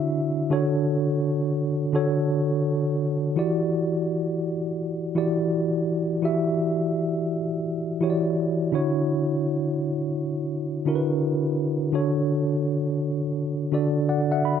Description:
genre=R&B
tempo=84 BPM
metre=4/4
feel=swing 63% on 16ths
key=E dorian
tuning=A4 = 440 Hz
part: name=mellow tine electric piano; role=solo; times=0.0-14.6 s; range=D3 to B5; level=-22 LUFS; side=equal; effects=medium stereo tremolo
room=light reverb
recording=none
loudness=-22 LUFS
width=side -8 dB against mid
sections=0.0-3.4 A section; 3.4-14.6 B section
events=tine electric piano fill 13.7-14.6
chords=0.0 Dmaj9; 0.5 Dmaj7; 3.4 Em9; 8.7 Dmaj9; 11.9 Dmaj7

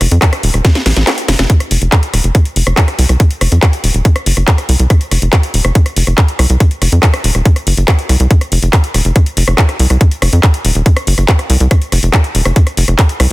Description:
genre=psychedelic trance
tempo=141 BPM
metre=4/4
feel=straight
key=unclear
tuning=A4 = 440 Hz
part: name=tight sequencer bass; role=bass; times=0.0-13.3 s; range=Eb1 to F2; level=-10 LUFS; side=equal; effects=none
part: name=techno drum kit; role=drums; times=0.0-13.3 s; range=handclaps, hi-hat, rim click, snare drum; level=-16 LUFS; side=left 1 dB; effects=none
part: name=electronic kick drum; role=drums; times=0.2-13.1 s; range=none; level=-9 LUFS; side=equal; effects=overdrive
room=digital ambience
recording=dense, heavily limited modern master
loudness=-9 LUFS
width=side -19 dB against mid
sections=0.0-13.3 A section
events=drum fill 0.6-1.5; kick drops out 1.1-1.5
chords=none

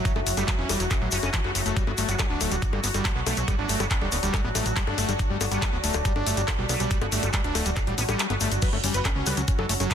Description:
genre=psychedelic trance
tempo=140 BPM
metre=4/4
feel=straight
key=unclear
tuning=A4 = 440 Hz
part: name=bubbling stepped-filter texture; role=sustained chords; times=0.0-9.9 s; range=F#3 to F#4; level=-33 LUFS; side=equal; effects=chorus, built-in reverb, sidechain pumping
part: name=screaming distorted acid line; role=riff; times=0.0-9.9 s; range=E3 to F#4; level=-31 LUFS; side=moving between left 8 dB and right 8 dB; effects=distortion, chorus, auto-pan, sidechain pumping, digital delay
part: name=deep dark ambient pad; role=texture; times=0.0-9.9 s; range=F#4 to A5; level=-36 LUFS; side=left 1 dB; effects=chorus, built-in reverb, sidechain pumping
part: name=drum and bass drum kit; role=drums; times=0.1-9.9 s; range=bongos, crash cymbal, handclaps, hi-hat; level=-29 LUFS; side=left 3 dB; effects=none
part: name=electronic kick drum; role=drums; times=0.1-9.9 s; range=none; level=-26 LUFS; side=equal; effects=none
part: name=tube shaker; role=percussion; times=0.1-9.9 s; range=none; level=-34 LUFS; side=left 2 dB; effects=none
part: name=plucky analog bass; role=bass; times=0.2-9.9 s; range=D1 to C#2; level=-28 LUFS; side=equal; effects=none
part: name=vowel-sweep wobble bass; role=second line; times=0.4-9.1 s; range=A3 to C#4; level=-38 LUFS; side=right 3 dB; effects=none
part: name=wide unison lead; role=melody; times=8.6-9.9 s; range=C#4 to B4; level=-32 LUFS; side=equal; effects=phaser, sidechain pumping, digital delay
room=light reverb, digital ambience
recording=dense, heavily limited modern master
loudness=-22 LUFS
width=side -8 dB against mid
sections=0.0-9.9 A section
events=kick drops out 8.2-8.6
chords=0.0 F#5; 1.8 G5; 8.6 F#5

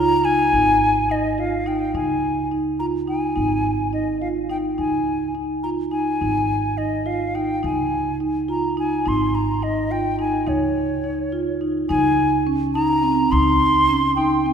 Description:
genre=contemporary instrumental, chamber music in an uneven meter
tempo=211 BPM (eighths)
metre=5/8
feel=straight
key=Db lydian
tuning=A4 = 440 Hz
part: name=hollow concert flute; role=melody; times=0.0-14.5 s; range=Db5 to C6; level=-22 LUFS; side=left 2 dB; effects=none
part: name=marimba with medium mallets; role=arpeggios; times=0.0-14.5 s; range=C4 to F4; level=-21 LUFS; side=right 2 dB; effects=none
part: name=upright bass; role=bass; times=0.0-14.5 s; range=Ab1 to Db2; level=-28 LUFS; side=equal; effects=none
room=wet concert hall reverb, RT60 2.5 s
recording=recorded in a church or concert hall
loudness=-18 LUFS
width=side -7 dB against mid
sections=0.5-11.9 A section; 11.9-14.5 B section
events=none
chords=0.0 Db; 0.5 Ab5; 1.9 Db5; 3.4 Ab5; 4.8 Db; 6.2 Ab5; 7.6 Db; 9.1 Ab5; 10.5 Db; 11.9 Dbmaj7sus2

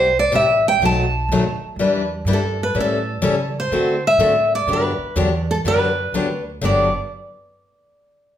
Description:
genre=acoustic string swing (jazz manouche)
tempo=124 BPM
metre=4/4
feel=swing 65% on 8ths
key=G major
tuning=A4 = 437 Hz
part: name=picked steel-string acoustic guitar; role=melody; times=0.0-6.9 s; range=A4 to A5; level=-19 LUFS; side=right 1 dB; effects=none
part: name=picked steel-string acoustic guitar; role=accompaniment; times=0.0-6.9 s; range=G2 to B4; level=-20 LUFS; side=left 2 dB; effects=none
part: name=upright bass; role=bass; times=0.0-6.9 s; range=G1 to D3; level=-25 LUFS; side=right 1 dB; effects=none
room=wet large studio reverb, RT60 0.8 s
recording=band playing live in one room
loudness=-16 LUFS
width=side -10 dB against mid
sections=0.0-6.6 A section; 6.6-8.4 B section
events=none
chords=0.0 Cmaj7; 0.8 B7; 1.8 Em7; 2.8 A7; 3.7 D7; 4.7 Gmaj7

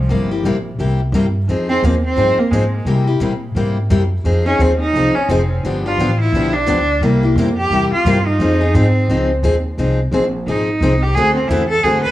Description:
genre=acoustic string swing (jazz manouche)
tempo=174 BPM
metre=4/4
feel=swing 60% on 8ths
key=F minor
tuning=A4 = 440 Hz
part: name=clear cello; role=melody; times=0.0-12.1 s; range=F3 to B4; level=-18 LUFS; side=right 1 dB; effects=analog delay
part: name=upright bass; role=bass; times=0.0-12.1 s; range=F1 to C3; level=-18 LUFS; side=equal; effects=none
part: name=picked steel-string acoustic guitar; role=accompaniment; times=0.1-12.1 s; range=C3 to A4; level=-18 LUFS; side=left 2 dB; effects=none
room=light reverb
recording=worn, warbling old tape, cassette tape, warbly pitch drift, small room ambience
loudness=-13 LUFS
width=side -14 dB against mid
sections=0.0-9.8 A section; 9.8-12.1 A section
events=cello solo 0.0-12.1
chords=0.1 C7; 1.5 Fm7; 2.9 C7; 4.2 Fm7; 5.6 G7; 7.0 C7; 8.4 Fm7; 11.2 D7

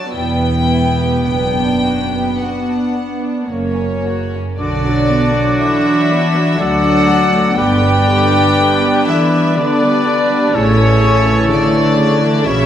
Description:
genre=classical, slow romantic movement for symphony orchestra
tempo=52-64 BPM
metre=3/4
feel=rubato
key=B minor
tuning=A4 = 440 Hz
part: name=rich studio violin section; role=melody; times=0.0-12.7 s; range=C#5 to A5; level=-20 LUFS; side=left 2 dB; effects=none
part: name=warm studio violin section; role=second line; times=0.0-12.7 s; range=G3 to D5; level=-24 LUFS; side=left 3 dB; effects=none
part: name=warm studio viola section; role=accompaniment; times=0.0-12.7 s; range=C#3 to F#4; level=-18 LUFS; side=right 1 dB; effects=none
part: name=rich studio double bass section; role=bass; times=0.1-12.7 s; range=E1 to D2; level=-19 LUFS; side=right 2 dB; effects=none
part: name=warm studio cello section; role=bass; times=0.1-12.7 s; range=E2 to G3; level=-20 LUFS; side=equal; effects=none
part: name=clear oboe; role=second line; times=4.6-12.7 s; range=F#4 to C#5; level=-22 LUFS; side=right 2 dB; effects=none
part: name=dark clarinet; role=second line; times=4.6-12.7 s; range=D4 to F#4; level=-22 LUFS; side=left 1 dB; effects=none
part: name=silver concert flute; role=second line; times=4.6-12.7 s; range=C#6 to D6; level=-22 LUFS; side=left 2 dB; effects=none
part: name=mellow French horn section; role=sustained chords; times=4.6-12.7 s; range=F#3 to F#4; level=-21 LUFS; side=left 3 dB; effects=none
part: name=clear trumpet section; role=stabs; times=4.6-12.7 s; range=C#5 to D5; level=-21 LUFS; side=left 1 dB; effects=none
room=moderate scoring stage reverb, RT60 1.6 s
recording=none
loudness=-12 LUFS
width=side -10 dB against mid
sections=0.0-4.6 A section; 4.6-12.7 B section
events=none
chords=0.1 Em; 1.3 Bm/F#; 3.5 F#; 4.6 Bm; 6.6 D; 7.6 G; 10.6 A

